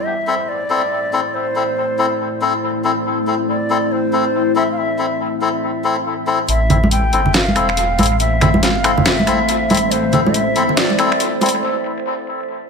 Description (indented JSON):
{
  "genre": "deep dubstep",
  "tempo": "140 BPM",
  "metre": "4/4",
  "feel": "swing 62% on 16ths, half-time",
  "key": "A minor",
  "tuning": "A4 = 440 Hz",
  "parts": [
    { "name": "reedy ney", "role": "melody", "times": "0.0-11.3 s", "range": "C5 to G5", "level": "-21 LUFS", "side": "equal", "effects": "dub echo" },
    { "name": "deep dark ambient pad", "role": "sustained chords", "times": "0.0-12.7 s", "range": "E3 to C5", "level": "-22 LUFS", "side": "left 1 dB", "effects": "chorus, built-in reverb" },
    { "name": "melodica", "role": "stabs", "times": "0.3-11.5 s", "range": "C4 to A4", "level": "-20 LUFS", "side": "left 4 dB", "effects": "low-pass filter, dub echo" },
    { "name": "dark detuned saw bass", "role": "bass", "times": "6.5-11.6 s", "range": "E1 to A1", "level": "-21 LUFS", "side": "equal", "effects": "none" },
    { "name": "dubstep drum kit", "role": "drums", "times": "6.5-11.6 s", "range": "finger snaps, hi-hat, snare drum", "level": "-19 LUFS", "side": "equal", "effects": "overdrive, high-pass filter on hats, low-pass filter on hats, high-pass filter on snare, low-pass filter on snare, analog delay" },
    { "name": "congas", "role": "percussion", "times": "6.7-11.5 s", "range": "none", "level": "-20 LUFS", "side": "right 2 dB", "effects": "dub echo" }
  ],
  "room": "moderate echo chamber reverb, RT60 1.2 s, small room reverb",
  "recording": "echo-heavy mix, high-pass filter",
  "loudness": "-14 LUFS",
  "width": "side -5 dB against mid",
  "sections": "0.0-6.5 A section; 6.5-12.7 B section",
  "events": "build-up 6.5-12.7; break 11.6-12.7",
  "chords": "0.0 Am"
}